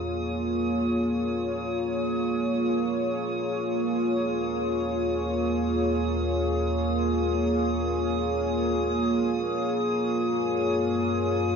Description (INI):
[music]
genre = ambient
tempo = free time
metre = none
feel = none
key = unclear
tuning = A4 = 444 Hz
[part]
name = warm analog pad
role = sustained chords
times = 0.0-11.6 s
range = Bb3 to Db5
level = -25 LUFS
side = equal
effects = chorus
[part]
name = deep rumbling drone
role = bass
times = 0.0-11.6 s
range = Eb2 to Gb2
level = -34 LUFS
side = left 1 dB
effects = built-in reverb
[part]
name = drifting glass-harmonics texture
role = texture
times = 0.0-11.6 s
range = Eb6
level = -35 LUFS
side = equal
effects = chorus, built-in reverb
[sound]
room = wet huge ambient reverb, RT60 7.6 s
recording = dreamy mix soaked in reverb, nothing above 7.5 kHz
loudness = -24 LUFS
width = side -6 dB against mid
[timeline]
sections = 0.0-11.6 A section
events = fade-in on synth drone 0.0-11.6; fade-in on synth texture 0.0-11.6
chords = 0.0 Emaj7; 3.3 Eb5; 9.6 Gbmaj7